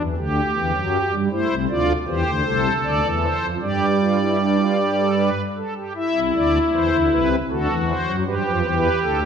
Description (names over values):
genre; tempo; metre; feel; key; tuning
classical, baroque-style 3-part fugue for pipe organ; 78 BPM; 3/4; straight; C major; A4 = 441 Hz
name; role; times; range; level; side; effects
pipe organ, strings celeste; solo; 0.0-9.3 s; C2 to E5; -18 LUFS; equal; none
room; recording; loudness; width
wet recital hall reverb, RT60 1.4 s; none; -18 LUFS; side -7 dB against mid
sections
0.0-6.0 A section; 6.0-9.3 B section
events
none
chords
0.0 G5; 0.5 Emadd9; 1.3 Am; 3.6 G5; 6.0 C; 7.5 D7; 8.3 G7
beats
0.55 | 1.31 2.07 2.83 | 3.61 4.40 5.18 | 5.96 6.73 7.50 | 8.27 9.03